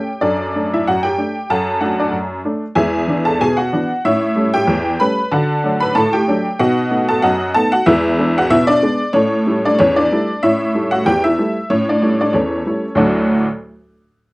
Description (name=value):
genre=ragtime piano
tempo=94 BPM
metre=2/4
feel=swing 54% on 16ths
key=D major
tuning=A4 = 442 Hz
part: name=honky-tonk upright piano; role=solo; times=0.0-13.5 s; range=D2 to B5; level=-14 LUFS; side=equal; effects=none
room=little or no reverb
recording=dry, close 1970s-style studio recording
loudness=-14 LUFS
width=side -23 dB against mid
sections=0.0-13.0 A section; 13.0-14.3 B section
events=none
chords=0.2 D/F#; 2.8 E7; 4.0 A7; 5.3 D; 6.6 B7; 7.9 E7; 9.1 A7; 13.0 D